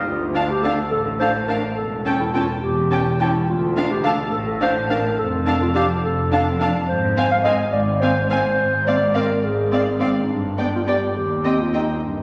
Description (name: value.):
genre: cinematic, playful, whimsical film cue.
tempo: 70 BPM (dotted quarters).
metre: 6/8.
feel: straight.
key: D minor, C minor from 6.9 s.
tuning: A4 = 439 Hz.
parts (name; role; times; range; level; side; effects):
dark clarinet; second line; 0.1-12.2 s; C4 to F5; -24 LUFS; equal; none.
rich studio double bass section; bass; 0.1-12.2 s; E1 to Eb2; -28 LUFS; equal; none.
warm studio cello section; bass; 0.1-12.2 s; D2 to A2; -29 LUFS; equal; none.
warm studio viola section; accompaniment; 0.3-11.8 s; B3 to D4; -29 LUFS; equal; none.
warm studio violin section; melody; 0.4-11.8 s; F5 to A5; -32 LUFS; equal; none.
rich studio violin section; second line; 0.4-11.8 s; D5 to G5; -29 LUFS; equal; none.
room: wet concert hall reverb, RT60 1.9 s.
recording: nothing above 10.3 kHz.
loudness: -20 LUFS.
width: mono.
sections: 0.1-12.2 A section.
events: none.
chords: 0.1 Dm; 1.8 A7/E; 3.5 Dm; 5.2 Dm/F; 6.9 Fm/Ab; 10.3 G; 11.2 Cm/Eb.